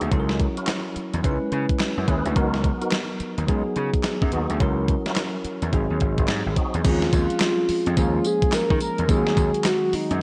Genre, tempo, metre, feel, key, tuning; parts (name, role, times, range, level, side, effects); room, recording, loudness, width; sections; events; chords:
R&B, new jack swing; 107 BPM; 4/4; swing 63% on 16ths; A4 = 440 Hz
bell-like tine electric piano; accompaniment; 0.0-10.2 s; Eb3 to B4; -29 LUFS; equal; slapback echo
tonewheel organ; stabs; 0.0-6.8 s; B3 to B4; -35 LUFS; equal; chorus vibrato, fast rotary speaker, delay
gritty slap bass; bass; 0.0-10.2 s; G#1 to Eb3; -27 LUFS; equal; overdrive
clean 12-bit digital drum machine; drums; 0.0-10.2 s; crash cymbal, handclaps, hi-hat, kick drum, snare drum, tambourine; -27 LUFS; equal; vintage 12-bit sampler grit
mellow horn-like synth lead; melody; 6.9-10.2 s; Eb4 to Bb4; -26 LUFS; equal; chorus, slapback echo, delay
moderate lush hall reverb, RT60 2.4 s; big arena sound; -23 LUFS; mono
0.0-6.8 A section; 6.8-10.2 B section
0.1 F#7/C#; 1.2 C#m7; 2.4 Bmaj7/C#; 3.5 G#m7/C#; 4.6 F#7/C#; 5.7 G#7; 6.8 Dbmaj7/Eb; 8.0 Bbm7/Eb; 9.1 Ab7/Eb